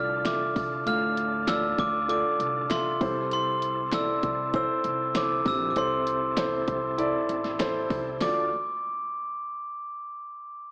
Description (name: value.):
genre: piano-driven pop.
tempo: 98 BPM.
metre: 4/4.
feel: straight.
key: D minor.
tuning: A4 = 440 Hz.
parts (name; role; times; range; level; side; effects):
glockenspiel with hard plastic mallets; melody; 0.0-8.5 s; C6 to F6; -28 LUFS; equal; none.
dark grand piano; accompaniment; 0.0-8.5 s; D2 to F5; -28 LUFS; equal; none.
overdriven tonewheel organ; sustained chords; 0.0-8.5 s; C3 to A4; -38 LUFS; equal; chorus vibrato, fast rotary speaker.
upright bass; bass; 0.0-8.5 s; A1 to D2; -38 LUFS; equal; none.
pop drum kit; drums; 0.3-8.4 s; hi-hat, kick drum, snare drum; -32 LUFS; equal; none.
group handclap; percussion; 0.3-8.5 s; none; -43 LUFS; equal; none.
room: light reverb, studio reverb.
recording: AM radio sound.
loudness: -24 LUFS.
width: side -34 dB against mid.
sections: 0.0-8.2 A section; 8.2-10.7 B section.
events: none.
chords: 0.0 Dm; 3.0 Am; 8.2 Dm.